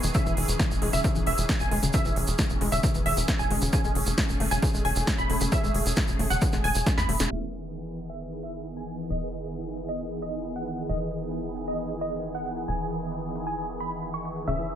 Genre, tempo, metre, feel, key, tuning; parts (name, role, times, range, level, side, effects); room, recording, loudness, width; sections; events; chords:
uplifting trance; 134 BPM; 4/4; straight; E major; A4 = 442 Hz
supersaw stab; melody; 0.0-14.8 s; D#5 to C#6; -32 LUFS; right 1 dB; sidechain pumping, low-pass filter, dub echo
filtered supersaw swell; sustained chords; 0.0-14.8 s; D#3 to G#4; -33 LUFS; right 1 dB; phaser, sidechain pumping
wide unison pluck; arpeggios; 0.0-7.2, 14.5-14.6 s; C#3 to A3; -33 LUFS; left 4 dB; sidechain pumping, dub echo
tight sequencer bass; bass; 0.0-14.8 s; E1 to E2; -32 LUFS; equal; sidechain pumping
big-room dance drum kit; drums; 0.0-14.8 s; hi-hat, snare drum; -31 LUFS; right 1 dB; overdrive, sidechain pumping on hats, low-pass filter on hats, sidechain pumping on cymbals, low-pass filter on cymbals, low-pass filter on snare, low-pass filter on room
tube shaker; percussion; 0.0-7.3, 14.5-14.7 s; -34 LUFS; right 2 dB
electronic kick drum; drums; 0.1-7.0 s; -27 LUFS; equal; overdrive
light reverb; low-pass filter; -24 LUFS; side -10 dB against mid
0.0-7.3 A section; 7.3-14.8 B section
drum fill 6.9-7.3; band accent 7.2; filter sweep 7.3-14.8
0.1 C#madd9/E; 3.7 Amaj7/E; 7.3 Emaj7